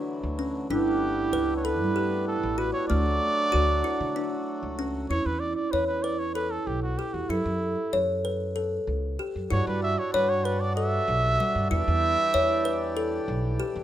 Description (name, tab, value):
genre	contemporary instrumental, chamber music in an uneven meter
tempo	191 BPM (eighths)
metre	7/8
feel	straight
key	E dorian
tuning	A4 = 438 Hz
part	hand-pumped harmonium	sustained chords	0.0-5.1, 9.5-13.8 s	D3 to G4	-35 LUFS	left 2 dB	none
part	kalimba	arpeggios	0.0-13.8 s	G3 to C#5	-30 LUFS	left 4 dB	none
part	upright bass	bass	0.2-13.8 s	G1 to D3	-30 LUFS	right 1 dB	none
part	warm trumpet	melody	0.7-13.2 s	E4 to E5	-28 LUFS	right 2 dB	none
part	vibraphone with soft mallets	second line	0.7-13.6 s	D4 to A4	-32 LUFS	right 6 dB	none
room	light reverb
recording	close, detailed microphones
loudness	-24 LUFS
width	side -12 dB against mid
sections	0.0-5.1 A section; 5.1-13.8 B section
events	none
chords	0.0 Dadd9; 0.7 Gadd9; 2.9 D; 5.1 E5; 7.3 F#m7; 9.5 Em7/G; 11.7 Em7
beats	0.07 0.39 | 0.70 1.01 1.33 1.64 1.96 2.27 2.59 | 2.90 3.21 3.53 3.85 4.16 4.47 4.79 | 5.10 5.42 5.73 6.05 6.36 6.68 6.99 | 7.31 7.62 7.94 8.25 8.57 8.88 9.20 | 9.51 9.83 10.14 10.46 10.77 11.09 11.40 | 11.71 12.03 12.34 12.66 12.97 13.29 13.60